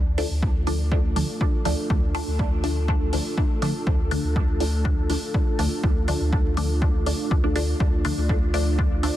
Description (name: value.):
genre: dub techno.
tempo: 122 BPM.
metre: 4/4.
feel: straight.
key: D minor.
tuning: A4 = 443 Hz.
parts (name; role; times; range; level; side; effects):
dark analog pad; sustained chords; 0.0-9.2 s; A3 to D5; -30 LUFS; equal; chorus, sidechain pumping.
pure sine sub bass; bass; 0.0-9.1 s; D2; -25 LUFS; equal; sidechain pumping.
filtered dub chord stab; stabs; 0.2-9.1 s; D3 to D4; -28 LUFS; left 1 dB; phaser, sidechain pumping, dub echo.
electronic hi-hat; drums; 0.2-9.1 s; none; -35 LUFS; equal; overdrive, studio reverb.
electronic kick drum; drums; 0.4-8.9 s; none; -23 LUFS; equal; overdrive, studio reverb.
room: digital ambience.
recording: dense, heavily limited modern master, vinyl crackle.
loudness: -20 LUFS.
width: side -13 dB against mid.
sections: 0.0-9.2 A section.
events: none.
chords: 0.0 Dm.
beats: 0.42 0.92 1.41 | 1.90 2.39 2.88 3.38 | 3.87 4.36 4.85 5.34 | 5.83 6.33 6.82 7.31 | 7.80 8.29 8.79.